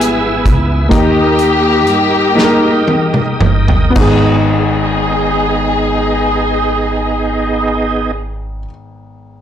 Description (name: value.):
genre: slow gospel.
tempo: 35-45 BPM (dotted quarters).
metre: 6/8.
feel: straight.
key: G# harmonic minor.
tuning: A4 = 441 Hz.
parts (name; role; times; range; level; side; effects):
warm studio string section; melody; 0.0-8.1 s; A#3 to G#4; -16 LUFS; left 2 dB; slapback echo, plate reverb.
warm baby grand piano; accompaniment; 0.0-9.4 s; G#1 to A#4; -17 LUFS; left 1 dB; none.
bright tonewheel organ; sustained chords; 0.0-8.1 s; B3 to E6; -18 LUFS; right 3 dB; slow rotary speaker, chorus vibrato.
upright bass; bass; 0.0-8.6 s; G1 to G2; -19 LUFS; equal; none.
natural country drum kit; drums; 0.0-4.2 s; crash cymbal, hi-hat, kick drum, snare drum, toms; -16 LUFS; right 1 dB; soft clipping on snare.
room: moderate large studio reverb, RT60 0.9 s.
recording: blown-out, overdriven recording, overdrive.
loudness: -10 LUFS.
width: side -9 dB against mid.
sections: 0.0-4.0 A section; 4.0-7.3 B section.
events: slowing down 0.0-4.0; drum fill 2.4-4.0.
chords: 0.0 E; 0.9 D#; 4.0 G#m.